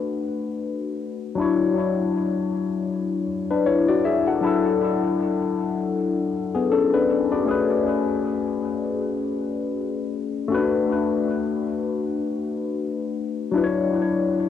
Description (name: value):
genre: reggae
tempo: 79 BPM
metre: 4/4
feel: swing 57% on 16ths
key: B dorian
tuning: A4 = 444 Hz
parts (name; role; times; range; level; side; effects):
- barky tine electric piano; solo; 0.0-14.5 s; F#3 to F#5; -21 LUFS; left 4 dB; overdrive, phaser, cassette tape, tape echo
room: light reverb, digital ambience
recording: home recording on cassette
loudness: -21 LUFS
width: side -9 dB against mid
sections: 0.0-14.5 A section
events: none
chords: 0.0 Bm7; 1.4 Dmaj9; 7.5 Amaj9; 10.5 Bm7; 13.5 Dmaj9